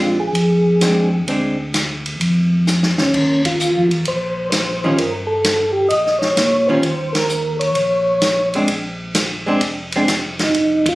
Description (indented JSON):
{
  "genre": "soul jazz organ trio",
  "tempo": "130 BPM",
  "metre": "4/4",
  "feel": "swing 68% on 8ths",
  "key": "Bb major",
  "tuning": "A4 = 439 Hz",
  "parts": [
    { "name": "percussive tonewheel organ", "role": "melody", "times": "0.0-10.9 s", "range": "Db4 to Eb5", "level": "-17 LUFS", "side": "equal", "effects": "chorus vibrato, slow rotary speaker" },
    { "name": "archtop guitar, miked and amplified", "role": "accompaniment", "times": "0.0-1.6, 4.8-10.1 s", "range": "Eb3 to F4", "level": "-18 LUFS", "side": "equal", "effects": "none" },
    { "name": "mellow tonewheel organ", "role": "bass", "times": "0.0-10.9 s", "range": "F1 to Bb2", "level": "-21 LUFS", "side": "equal", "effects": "overdrive, chorus vibrato, slow rotary speaker" },
    { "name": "swinging big-band drum kit", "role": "drums", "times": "0.3-10.9 s", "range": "crash cymbal, hi-hat, kick drum, ride cymbal, snare drum", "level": "-21 LUFS", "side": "equal", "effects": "none" }
  ],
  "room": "light reverb",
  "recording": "recorded on a phone in the room, studio reverb, compression",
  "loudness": "-15 LUFS",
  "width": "side -19 dB against mid",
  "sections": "0.0-10.9 A section",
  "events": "drum fill 2.7-3.1; band accent 3.4, 7.1, 10.8",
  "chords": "0.0 Bb9; 3.1 Eb7; 8.7 Bb9",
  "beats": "0.34 0.81 | 1.27 1.74 2.20 2.67 | 3.13 3.59 4.05 4.52 | 4.98 5.45 5.91 6.37 | 6.83 7.30 7.76 8.22 | 8.69 9.15 9.61 10.07 | 10.54"
}